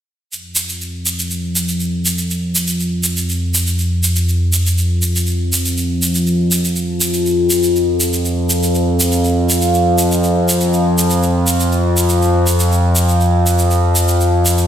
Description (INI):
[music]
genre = melodic techno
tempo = 121 BPM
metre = 4/4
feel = straight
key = unclear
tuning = A4 = 440 Hz
[part]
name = analog drone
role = drone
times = 0.6-14.7 s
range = F2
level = -14 LUFS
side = equal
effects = chorus
[part]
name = egg shaker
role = percussion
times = 0.3-14.7 s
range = none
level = -19 LUFS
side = right 1 dB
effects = none
[sound]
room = moderate lush hall reverb, RT60 2.0 s, small room ambience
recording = played on a big sound system in a bare room, stone room reverb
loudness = -13 LUFS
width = side -10 dB against mid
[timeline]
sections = 0.3-14.7 A section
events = none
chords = none